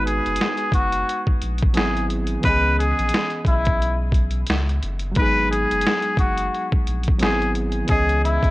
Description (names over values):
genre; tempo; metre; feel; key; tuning
lo-fi hip hop; 88 BPM; 4/4; swing 60% on 16ths; G# minor; A4 = 441 Hz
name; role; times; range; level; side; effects
trumpet with straight mute; melody; 0.0-8.5 s; E4 to B4; -22 LUFS; left 1 dB; cassette tape, tape echo
reed electric piano; accompaniment; 0.0-8.5 s; D#3 to D#5; -27 LUFS; right 1 dB; cassette tape
sub bass with octave; bass; 0.0-8.5 s; F#1 to C#2; -24 LUFS; equal; tube saturation
boom bap sampler-style drum kit; drums; 0.1-8.5 s; hi-hat, kick drum, snare drum; -22 LUFS; equal; vintage 12-bit sampler grit, cassette tape
room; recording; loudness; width
light reverb; home recording on cassette; -18 LUFS; side -18 dB against mid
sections
0.0-8.5 A section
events
none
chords
0.0 G#m9; 1.8 G#7alt; 2.4 C#m7; 5.2 G#m9; 7.2 G#7alt; 7.9 C#m7